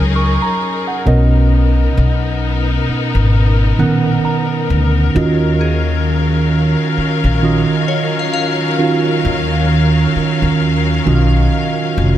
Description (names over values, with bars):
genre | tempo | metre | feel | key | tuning
R&B | 66 BPM | 4/4 | swing 58% on 16ths | Eb minor | A4 = 440 Hz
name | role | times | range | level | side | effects
mellow tine electric piano | accompaniment | 0.0-12.2 s | B2 to Db6 | -16 LUFS | right 4 dB | phaser
rich studio string section | sustained chords | 0.0-12.2 s | Eb3 to F5 | -20 LUFS | left 5 dB | none
upright bass | bass | 0.0-12.2 s | F1 to Eb2 | -14 LUFS | left 1 dB | none
glassy synth bell | texture | 5.6-11.1 s | Ab4 to F5 | -26 LUFS | left 5 dB | chorus, phaser, ping-pong delay
room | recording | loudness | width
light reverb, studio reverb | none | -12 LUFS | side -12 dB against mid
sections
0.0-12.2 A section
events
tine electric piano fill 3.3-5.2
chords
0.0 Gb69; 1.1 Bmaj7; 5.2 Ebm9